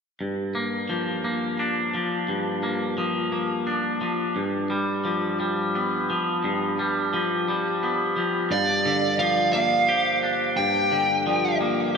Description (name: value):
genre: rock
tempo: 58 BPM (dotted quarters)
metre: 6/8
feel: straight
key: G minor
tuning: A4 = 443 Hz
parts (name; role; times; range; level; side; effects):
- twangy electric guitar; arpeggios; 0.2-12.0 s; G2 to G4; -23 LUFS; left 1 dB; slapback echo, digital delay
- fuzz lead guitar; melody; 8.5-11.6 s; D5 to G5; -22 LUFS; right 1 dB; distortion, digital delay
- vibraphone with medium mallets; arpeggios; 8.5-12.0 s; C5 to F5; -31 LUFS; right 6 dB; slapback echo, digital delay
room: wet lush hall reverb, RT60 2.9 s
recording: big arena sound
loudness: -22 LUFS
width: side -5 dB against mid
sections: 0.2-8.5 A section; 8.5-12.0 B section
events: none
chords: 0.2 Gm7; 4.4 G7; 8.5 Gm7